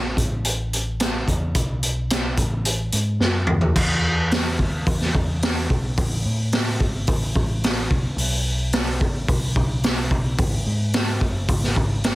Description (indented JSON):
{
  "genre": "indie rock",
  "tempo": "109 BPM",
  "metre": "4/4",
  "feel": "straight",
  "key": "E major",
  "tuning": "A4 = 442 Hz",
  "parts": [
    { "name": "hollow-body short-scale picked electric bass", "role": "bass", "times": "0.0-12.2 s", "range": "F#1 to A2", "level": "-24 LUFS", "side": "equal", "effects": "none" },
    { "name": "raw garage drum kit", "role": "drums", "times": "0.2-12.2 s", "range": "crash cymbal, hi-hat, kick drum, snare drum, toms", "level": "-21 LUFS", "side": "equal", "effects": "none" }
  ],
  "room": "little or no reverb",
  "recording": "dense, heavily limited modern master",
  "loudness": "-19 LUFS",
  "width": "side -18 dB against mid",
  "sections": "0.0-3.8 A section; 3.8-12.2 B section",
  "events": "drum fill 3.2-3.8",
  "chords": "none"
}